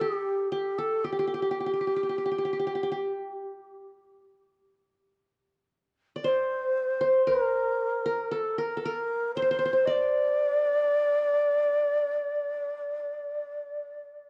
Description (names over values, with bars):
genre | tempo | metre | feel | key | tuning
Arabic maqam ensemble | 116 BPM (eighths) | 10/8 | straight | D maqam bayati | A4 = 440 Hz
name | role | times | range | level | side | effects
breathy reedy low ney | melody | 0.0-14.0 s | G4 to Eb5 | -30 LUFS | equal | cassette tape, plate reverb, analog delay
qanun | second line | 0.0-14.0 s | G4 to D5 | -31 LUFS | equal | cassette tape, plate reverb
room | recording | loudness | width
wet studio reverb, RT60 0.6 s | home recording on cassette | -28 LUFS | mono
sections
0.0-14.3 A section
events
none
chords
none